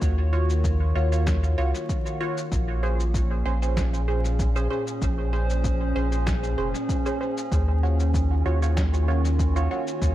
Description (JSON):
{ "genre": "ambient dub", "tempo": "96 BPM", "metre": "4/4", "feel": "swing 53% on 16ths", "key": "Bb minor", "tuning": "A4 = 436 Hz", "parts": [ { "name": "warbly tape-like pad", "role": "sustained chords", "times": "0.0-10.1 s", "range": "Bb2 to Db5", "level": "-31 LUFS", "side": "left 1 dB", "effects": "chorus, built-in reverb" }, { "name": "warm sub bass", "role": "bass", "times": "0.0-10.1 s", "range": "F1 to Eb2", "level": "-23 LUFS", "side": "equal", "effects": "none" }, { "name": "electronic cabasa and snare drum", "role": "drums", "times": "0.0-10.1 s", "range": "none", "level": "-36 LUFS", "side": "left 1 dB", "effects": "dub echo" }, { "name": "electronic kick drum", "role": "drums", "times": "0.0-10.1 s", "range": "none", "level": "-28 LUFS", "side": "equal", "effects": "none" }, { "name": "filtered dub chord stab", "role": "stabs", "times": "0.3-9.8 s", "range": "Db4 to Db5", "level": "-31 LUFS", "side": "right 2 dB", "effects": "phaser, dub echo" }, { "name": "wind-like tuned noise texture", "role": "texture", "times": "3.1-10.1 s", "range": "Db4", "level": "-37 LUFS", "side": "right 7 dB", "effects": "built-in reverb" } ], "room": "little or no reverb", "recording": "dark, warm production, vinyl crackle", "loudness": "-22 LUFS", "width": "side -14 dB against mid", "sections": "0.0-10.1 A section", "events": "none", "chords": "0.0 Ebm9; 2.5 Bbm9; 7.5 Ebm9" }